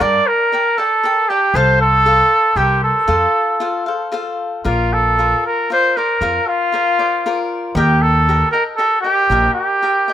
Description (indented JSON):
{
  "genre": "mexican folk, mariachi",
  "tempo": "116 BPM",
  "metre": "3/4",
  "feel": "straight",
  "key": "F major, Bb major from 4.7 s",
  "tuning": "A4 = 440 Hz",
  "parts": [
    { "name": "warm trumpet", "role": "melody", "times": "0.0-10.1 s", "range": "F4 to D5", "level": "-14 LUFS", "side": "right 1 dB", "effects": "none" },
    { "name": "cavaquinho", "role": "accompaniment", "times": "0.0-10.1 s", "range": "F4 to A5", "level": "-22 LUFS", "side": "left 3 dB", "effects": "none" },
    { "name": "upright bass", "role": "bass", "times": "0.0-9.5 s", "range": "Bb1 to G2", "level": "-18 LUFS", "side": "equal", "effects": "none" }
  ],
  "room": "studio ambience",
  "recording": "rough home demo mix",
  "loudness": "-13 LUFS",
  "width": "side -11 dB against mid",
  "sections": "0.0-4.7 A section; 4.7-10.1 B section",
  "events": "none",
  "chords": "0.0 Gmadd9; 1.5 F/C; 2.6 C7; 3.1 F; 4.7 Bbadd9; 7.8 Eb"
}